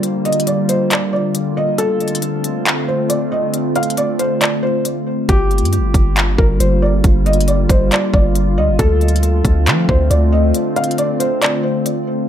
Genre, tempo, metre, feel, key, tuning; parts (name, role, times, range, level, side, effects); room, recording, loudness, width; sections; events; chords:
hip hop, atmospheric cloud-rap; 137 BPM; 4/4; half-time; A4 = 438 Hz
felt-muted upright piano; melody; 0.0-11.8 s; G4 to F5; -20 LUFS; equal; digital delay
warbly tape-like pad; sustained chords; 0.0-12.3 s; D3 to F4; -19 LUFS; left 1 dB; chorus, built-in reverb, sidechain pumping
trap drum kit; drums; 0.0-12.0 s; handclaps, hi-hat, kick drum; -16 LUFS; equal
long sustained 808-style bass; bass; 5.3-10.5 s; G1 to F3; -15 LUFS; equal
little or no reverb; -13 LUFS; side -10 dB against mid
0.0-12.3 A section
break 0.0-5.3, 10.5-12.3
0.0 Gm7; 1.8 Dm7; 5.3 Gm7; 8.8 Dm7